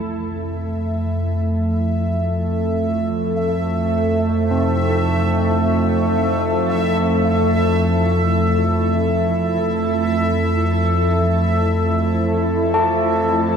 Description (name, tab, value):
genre	dark ambient drone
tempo	free time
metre	none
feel	none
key	F major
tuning	A4 = 443 Hz
part	granular cloud pad	sustained chords	0.0-13.6 s	E4 to A4	-27 LUFS	equal	built-in reverb
part	carillon bells	arpeggios	0.0-13.6 s	C3 to A4	-25 LUFS	left 1 dB	ping-pong delay
part	analog drone	drone	0.0-13.6 s	F2 to A3	-18 LUFS	equal	chorus
part	bubbling stepped-filter texture	texture	0.5-13.6 s	E5	-24 LUFS	equal	chorus, built-in reverb
room	wet cathedral reverb, RT60 6.1 s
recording	in a vast, echoing space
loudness	-16 LUFS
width	side -7 dB against mid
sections	0.0-13.6 A section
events	fade-in on ambient pad 0.0-13.6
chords	0.0 F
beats	free time